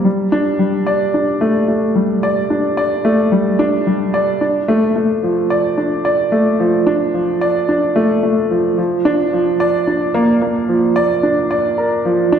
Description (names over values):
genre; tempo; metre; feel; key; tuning
electronica; 110 BPM; 4/4; straight; unclear; A4 = 440 Hz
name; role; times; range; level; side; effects
warm upright piano; solo; 0.0-12.4 s; F3 to D5; -13 LUFS; equal; none
room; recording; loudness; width
wet recital hall reverb, RT60 1.4 s; none; -13 LUFS; side -8 dB against mid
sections
0.1-12.4 A section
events
build-up 0.1-12.4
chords
none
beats
| 0.05 0.60 1.14 1.69 | 2.23 2.78 3.33 3.87 | 4.42 4.96 5.51 6.05 | 6.60 7.14 7.69 8.23 | 8.78 9.32 9.87 10.42 | 10.96 11.51 12.05